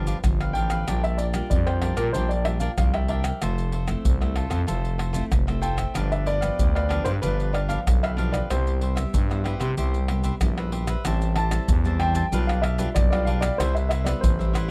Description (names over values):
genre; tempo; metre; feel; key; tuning
samba and choro; 94 BPM; 4/4; straight; C major, A minor from 11.1 s; A4 = 439 Hz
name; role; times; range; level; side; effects
warm baby grand piano; melody; 0.0-14.7 s; Bb4 to A5; -31 LUFS; equal; plate reverb
cavaquinho; accompaniment; 0.0-14.7 s; D4 to A5; -36 LUFS; equal; none
nylon-string guitar; accompaniment; 0.0-14.7 s; G2 to F4; -35 LUFS; equal; none
growling FM bass; bass; 0.0-14.7 s; F1 to C3; -27 LUFS; equal; none
maracas, surdo, pandeiro and tamborim; percussion; 0.1-14.7 s; none; -28 LUFS; equal; none
room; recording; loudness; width
little or no reverb; close, detailed microphones; -24 LUFS; mono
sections
0.0-11.1 A section; 11.1-14.7 B section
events
none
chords
0.0 G7; 0.9 Bb6; 3.4 Fmaj7; 6.0 G7; 8.5 Cmaj7; 11.1 Am7; 12.3 G7/B; 13.6 Cmaj7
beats
0.25 | 0.88 1.52 2.15 2.79 | 3.42 4.06 4.69 5.33 | 5.96 6.60 7.24 7.87 | 8.51 9.15 9.78 10.42 | 11.05 11.69 12.33 12.96 | 13.60 14.24